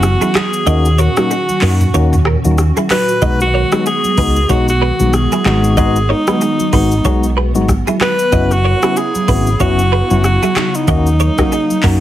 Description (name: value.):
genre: afrobeats.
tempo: 94 BPM.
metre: 4/4.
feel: swing 58% on 16ths.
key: B major.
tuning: A4 = 440 Hz.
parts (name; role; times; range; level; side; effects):
clear alto saxophone; melody; 0.0-12.0 s; D#4 to B4; -17 LUFS; equal; plate reverb.
tine electric piano; accompaniment; 0.0-12.0 s; G#3 to F#4; -18 LUFS; left 4 dB; none.
hollow soft pad; sustained chords; 0.0-12.0 s; A#2 to F#4; -22 LUFS; equal; ensemble chorus.
hollow-body short-scale fingered electric bass; bass; 0.0-12.0 s; F#1 to F#2; -14 LUFS; equal; none.
afro-pop drum kit; drums; 0.0-12.0 s; handclaps, hi-hat, kick drum, rim click, shaker, toms; -18 LUFS; equal; none.
direct-recorded clean electric guitar; riff; 0.2-12.0 s; D#4 to D#5; -22 LUFS; right 3 dB; ensemble chorus, tape echo.
congas; percussion; 0.2-12.0 s; none; -22 LUFS; right 3 dB; none.
room: light reverb.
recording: heavily compressed radio sound.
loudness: -11 LUFS.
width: side -12 dB against mid.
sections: 0.0-12.0 A section.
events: break 0.0-3.2.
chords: 0.0 F#7sus4; 0.7 D#m7; 3.2 B6; 5.5 G#m7; 8.3 F#7sus4; 10.9 D#m7.